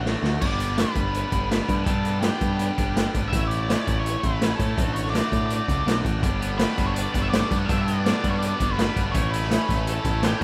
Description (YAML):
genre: indie rock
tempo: 165 BPM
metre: 4/4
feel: straight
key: G lydian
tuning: A4 = 440 Hz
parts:
  - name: octave-fuzz lead guitar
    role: melody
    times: 0.0-10.4 s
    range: G4 to F#5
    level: -32 LUFS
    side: equal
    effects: distortion, digital delay
  - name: biting overdriven guitar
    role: riff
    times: 0.0-10.4 s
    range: G2 to F#4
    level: -32 LUFS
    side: equal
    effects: none
  - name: growling picked electric bass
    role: bass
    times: 0.0-10.4 s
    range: G1 to A2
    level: -29 LUFS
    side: equal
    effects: overdrive
  - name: raw garage drum kit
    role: drums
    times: 0.1-10.4 s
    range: crash cymbal, hi-hat, kick drum, snare drum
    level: -27 LUFS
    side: equal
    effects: none
  - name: distorted electric guitar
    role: riff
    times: 6.4-10.4 s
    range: E3 to A4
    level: -36 LUFS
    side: equal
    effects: overdrive, lush chorus
room: light reverb, studio reverb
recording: rough home demo mix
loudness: -24 LUFS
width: mono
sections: 0.4-10.4 A section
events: drum fill 0.0-0.4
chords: 0.4 G; 3.3 A; 4.8 D/A; 6.2 Gmaj7; 9.2 A